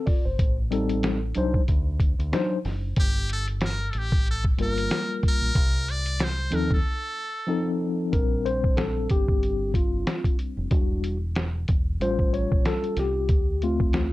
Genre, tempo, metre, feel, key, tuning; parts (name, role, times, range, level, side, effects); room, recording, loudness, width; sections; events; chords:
hip hop, jazz-hop; 93 BPM; 4/4; swing 57% on 16ths; Bb major; A4 = 440 Hz
mellow tine electric piano; accompaniment; 0.0-14.1 s; F3 to D5; -27 LUFS; left 2 dB; fast stereo tremolo, plate reverb
lo-fi sampler-style drum kit; drums; 0.1-14.1 s; hi-hat, kick drum, snare drum; -24 LUFS; equal; vintage 12-bit sampler grit
deep dub fingered electric bass; bass; 0.3-14.1 s; E1 to Eb2; -28 LUFS; equal
trumpet with metal mute; melody; 3.0-7.8 s; G4 to D5; -30 LUFS; equal; plate reverb
light reverb; dark, warm production; -22 LUFS; side -17 dB against mid
0.0-8.1 A section; 8.1-14.1 B section
break 6.8-8.1; tine electric piano solo 8.1-14.1
0.4 Am7b5; 1.7 D7b9; 3.0 Gm9; 5.6 Cmadd11; 6.8 F7; 8.1 Bb69; 10.7 Em7; 12.0 A7alt; 13.3 Dm7